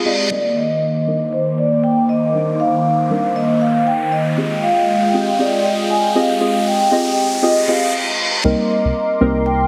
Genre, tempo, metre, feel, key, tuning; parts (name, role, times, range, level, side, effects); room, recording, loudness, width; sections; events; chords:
deep house; 118 BPM; 4/4; swing 59% on 16ths; C minor; A4 = 440 Hz
vibraphone with soft mallets; melody; 0.0-9.7 s; C5 to Ab5; -21 LUFS; equal; low-pass filter, dub echo
warm analog pad; sustained chords; 0.0-9.7 s; Eb3 to Eb6; -22 LUFS; equal; chorus
deep mellow chord stab; stabs; 0.0-9.7 s; G3 to Eb5; -22 LUFS; equal; chorus, tape echo
reverse cymbal and riser; sound effects; 0.0-8.4 s; -26 LUFS; equal
sub bass with octave; bass; 8.4-9.7 s; C2; -23 LUFS; equal; tube saturation
moderate echo chamber reverb, RT60 2.5 s; heavily compressed radio sound, multiband compression; -17 LUFS; mono
0.3-8.4 A section; 8.4-9.7 B section
reverse cymbal 0.0-0.3, 7.4-8.4; build-up 0.3-8.4; riser 0.3-7.9; filter sweep on analog synth pad 0.3-8.4; stop 7.9-8.4; drop 8.4-9.7
0.3 Cm9; 4.4 Fm9; 8.4 Cm9